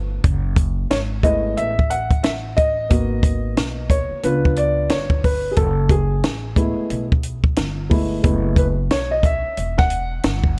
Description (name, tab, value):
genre	hip hop, jazz-hop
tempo	90 BPM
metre	4/4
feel	swing 60% on 16ths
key	F# dorian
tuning	A4 = 440 Hz
part	dark upright piano	accompaniment	0.0-10.6 s	E#3 to F#5	-24 LUFS	equal	none
part	upright bass	bass	0.0-10.6 s	E1 to C#2	-26 LUFS	equal	none
part	compact cocktail drum kit	drums	0.2-10.6 s	hi-hat, kick drum, snare drum	-21 LUFS	equal	none
room	studio reverb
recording	dark, warm production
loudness	-19 LUFS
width	mono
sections	0.2-10.6 A section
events	upright piano solo 0.2-10.6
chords	0.2 F#m11; 2.9 G#m9; 4.2 C#7b9; 5.6 F#m11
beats	| 0.24 0.91 1.57 2.24 | 2.90 3.57 4.24 4.91 | 5.57 6.24 6.91 7.57 | 8.24 8.90 9.57 10.24